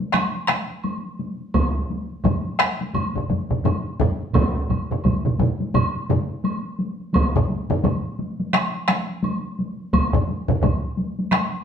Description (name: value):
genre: japanese traditional, taiko drum ensemble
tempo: 86 BPM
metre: 4/4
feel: swing 60% on 16ths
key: none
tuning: none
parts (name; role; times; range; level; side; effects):
- taiko ensemble; percussion; 0.0-11.6 s; none; -26 LUFS; left 1 dB; none
- taiko ensemble; percussion; 0.1-11.5 s; none; -24 LUFS; left 2 dB; none
- taiko ensemble; percussion; 0.1-11.5 s; none; -25 LUFS; right 3 dB; none
- woodblock; percussion; 0.1-11.5 s; none; -30 LUFS; right 2 dB; none
- solo taiko drums; percussion; 1.5-10.8 s; none; -23 LUFS; right 1 dB; none
room: wet studio reverb, RT60 0.8 s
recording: band playing live in one room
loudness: -20 LUFS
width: side -8 dB against mid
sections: 0.0-11.6 A section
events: none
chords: none